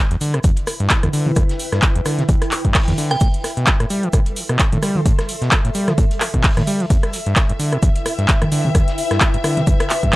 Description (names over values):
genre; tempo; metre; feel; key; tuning
acid house; 130 BPM; 4/4; swing 56% on 16ths; E minor; A4 = 444 Hz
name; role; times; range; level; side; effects
ethereal airy pad; texture; 0.7-10.2 s; E4 to C6; -28 LUFS; left 1 dB; ensemble chorus, built-in reverb, phaser, sidechain pumping
overdriven acid bass; riff; 0.1-10.1 s; E2 to G3; -21 LUFS; equal; distortion, tube saturation, sidechain pumping, tape echo
booming analog drum machine; drums; 0.1-10.2 s; handclaps, hi-hat, rim click, toms; -20 LUFS; equal; none
warm soul drum kit; drums; 0.2-10.2 s; hi-hat, shaker, snare drum; -36 LUFS; equal; none
electronic kick drum; drums; 0.4-10.2 s; none; -16 LUFS; equal; none
glassy synth bell; melody; 3.1-3.3 s; G5; -26 LUFS; right 3 dB; chorus, tremolo, analog delay
dark studio string section; sustained chords; 6.9-10.2 s; E5; -27 LUFS; left 4 dB; sidechain pumping
room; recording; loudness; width
little or no reverb; dry, gritty hardware recording; -15 LUFS; side -19 dB against mid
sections
0.0-10.2 A section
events
none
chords
0.0 Em7; 3.2 Am7; 6.9 Em7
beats
0.44 0.90 | 1.36 1.83 2.29 2.75 | 3.21 3.67 4.13 4.59 | 5.06 5.52 5.98 6.44 | 6.90 7.36 7.83 8.29 | 8.75 9.21 9.67 10.13